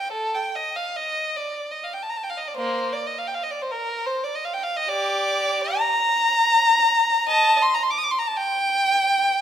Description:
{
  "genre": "classical, free, expressive piece for unaccompanied violin",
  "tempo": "50 BPM (dotted quarters)",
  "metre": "6/8",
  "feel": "uneven beats, rubato",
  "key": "Bb major",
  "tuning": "A4 = 440 Hz",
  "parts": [
    { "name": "warm violin", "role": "solo", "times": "0.0-9.4 s", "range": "Bb3 to Eb6", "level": "-20 LUFS", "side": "equal", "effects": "none" }
  ],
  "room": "moderate recital hall reverb, RT60 1.5 s",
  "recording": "none",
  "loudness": "-20 LUFS",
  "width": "side -9 dB against mid",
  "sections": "0.0-9.4 A section",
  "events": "none",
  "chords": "none",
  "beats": "| 0.13 1.36 | 2.56 3.71 | 4.90 6.18 | 7.29 8.36"
}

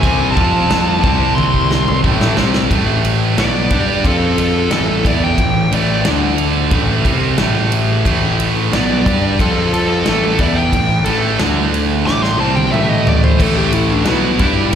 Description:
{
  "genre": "heavy metal",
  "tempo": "90 BPM",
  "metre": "4/4",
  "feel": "straight",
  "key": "A minor",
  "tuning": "A4 = 440 Hz",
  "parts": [
    { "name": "high-gain lead guitar", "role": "melody", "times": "0.0-14.8 s", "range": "D4 to D6", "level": "-20 LUFS", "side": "left 2 dB", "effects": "distortion, tape echo" },
    { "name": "high-gain distorted guitar", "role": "riff", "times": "0.0-14.8 s", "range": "A2 to G4", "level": "-18 LUFS", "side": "right 9 dB", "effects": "distortion" },
    { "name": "overdriven electric guitar", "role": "riff", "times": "0.0-2.7, 13.4-14.8 s", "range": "A2 to G4", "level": "-24 LUFS", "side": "left 2 dB", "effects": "slapback echo" },
    { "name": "sludgy distorted guitar", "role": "riff", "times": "0.0-14.7 s", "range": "A2 to G4", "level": "-21 LUFS", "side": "left 13 dB", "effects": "overdrive, slapback echo" },
    { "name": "fuzz picked electric bass", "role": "bass", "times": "0.0-14.7 s", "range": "A1 to G2", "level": "-18 LUFS", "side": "equal", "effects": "overdrive" },
    { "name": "big rock drum kit", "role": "drums", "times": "0.0-14.8 s", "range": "crash cymbal, kick drum, ride cymbal, snare drum, toms", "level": "-18 LUFS", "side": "equal", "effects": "none" }
  ],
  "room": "small room ambience",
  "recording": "live gig heard through the venue's PA, recital hall reverb",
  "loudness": "-12 LUFS",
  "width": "side -8 dB against mid",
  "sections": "0.0-2.7 A section; 2.7-14.8 B section",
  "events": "drum fill 1.4-2.7, 12.1-13.4; lead electric guitar solo 2.7-14.8",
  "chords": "0.4 F5; 1.0 C5; 2.0 Am; 2.7 A5; 4.0 F5; 4.7 A5; 6.1 D5; 6.7 Am; 9.4 F5; 10.1 A5; 11.4 D5; 12.1 Am",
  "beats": "| 0.03 0.70 1.37 2.04 | 2.71 3.38 4.05 4.72 | 5.39 6.06 6.73 7.39 | 8.06 8.73 9.40 10.06 | 10.73 11.40 12.07 12.73 | 13.40 14.07 14.73"
}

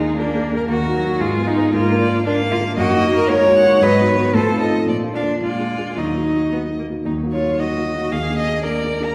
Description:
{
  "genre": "quick classical-period movement for piano quartet",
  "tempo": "114 BPM",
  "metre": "2/4",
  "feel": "rubato",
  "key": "Eb minor",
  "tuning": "A4 = 440 Hz",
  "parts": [
    { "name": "rich violin", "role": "melody", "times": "0.0-9.1 s", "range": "Ab4 to Bb5", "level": "-28 LUFS", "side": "equal", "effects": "none" },
    { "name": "rich cello", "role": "second line", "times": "0.0-9.1 s", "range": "D4 to Db5", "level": "-21 LUFS", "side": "equal", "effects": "none" },
    { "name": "dark concert grand piano", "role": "accompaniment", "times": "0.0-9.1 s", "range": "Eb2 to Bb4", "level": "-23 LUFS", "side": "equal", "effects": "none" },
    { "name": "rich viola", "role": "accompaniment", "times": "0.0-9.1 s", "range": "Eb3 to Cb4", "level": "-30 LUFS", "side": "equal", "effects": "none" }
  ],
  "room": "wet recital hall reverb, RT60 1.4 s",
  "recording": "recorded in a church or concert hall",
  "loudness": "-18 LUFS",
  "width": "mono",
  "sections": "0.0-7.1 A section; 7.1-9.1 A section",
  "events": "none",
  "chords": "0.0 Bb7; 0.7 Ebm; 1.2 Fdim/Ab; 1.7 Bb7/Ab; 2.8 Ebm/Gb; 3.8 Abm7; 4.3 F7/A; 4.9 Bb; 5.4 Bb7; 6.0 Ebm; 8.1 Bb7/Eb",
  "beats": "0.17 | 0.69 1.20 | 1.73 2.25 | 2.76 3.28 | 3.81 4.33 | 4.87 5.41 | 5.96 6.52 | 7.06 7.59 | 8.12 8.64"
}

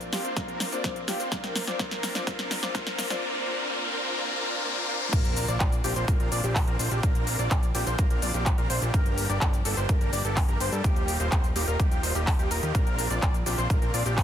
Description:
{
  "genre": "EDM, festival progressive house",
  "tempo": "126 BPM",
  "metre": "4/4",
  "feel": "straight",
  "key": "Bb major",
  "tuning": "A4 = 440 Hz",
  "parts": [
    { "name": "clear concert grand piano", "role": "accompaniment", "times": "0.0-3.2 s", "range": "Bb3 to F4", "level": "-42 LUFS", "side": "right 1 dB", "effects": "none" },
    { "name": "wide unison lead", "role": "arpeggios", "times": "0.0-14.2 s", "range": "G4 to D5", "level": "-34 LUFS", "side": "equal", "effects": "wide subtle chorus, sidechain pumping, tape echo" },
    { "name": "big supersaw lead", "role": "riff", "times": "0.0-14.2 s", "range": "G3 to D5", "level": "-32 LUFS", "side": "equal", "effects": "sidechain pumping, low-pass filter, tape echo" },
    { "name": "big-room dance drum kit", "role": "drums", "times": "0.0-14.2 s", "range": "crash cymbal, handclaps, hi-hat, shaker, snare drum", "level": "-32 LUFS", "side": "left 1 dB", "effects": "overdrive" },
    { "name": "riser and sub drop", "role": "sound effects", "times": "0.9-7.0 s", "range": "none", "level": "-34 LUFS", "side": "left 2 dB", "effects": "none" },
    { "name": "marimba with soft mallets", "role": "melody", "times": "0.1-3.2 s", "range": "C5 to F5", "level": "-37 LUFS", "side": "left 4 dB", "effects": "tape echo" },
    { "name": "electronic kick drum", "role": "drums", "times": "0.4-14.2 s", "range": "none", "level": "-25 LUFS", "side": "equal", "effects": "none" },
    { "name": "fat analog bass", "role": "bass", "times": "5.1-14.2 s", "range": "Eb1 to G2", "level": "-30 LUFS", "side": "equal", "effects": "sidechain pumping" }
  ],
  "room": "light reverb",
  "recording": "dense, heavily limited modern master, high-pass filter",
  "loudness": "-24 LUFS",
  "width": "side -10 dB against mid",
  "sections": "0.0-5.1 A section; 5.1-14.2 B section",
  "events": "build-up 0.0-5.1; drum fill 0.0-3.2; filter sweep on analog synth lead 0.0-5.1; riser 0.9-5.1; drop 5.1-14.2; impact 5.1-7.0",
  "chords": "0.0 Bbadd9; 8.9 Gm; 10.8 Ebadd9; 12.7 Bbadd9",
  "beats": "0.37 0.84 | 1.32 1.79 2.27 2.75 | 3.22 3.70 4.18 4.65 | 5.13 5.61 6.08 6.56 | 7.03 7.51 7.99 8.46 | 8.94 9.41 9.89 10.37 | 10.84 11.32 11.79 12.27 | 12.75 13.22 13.70 14.18"
}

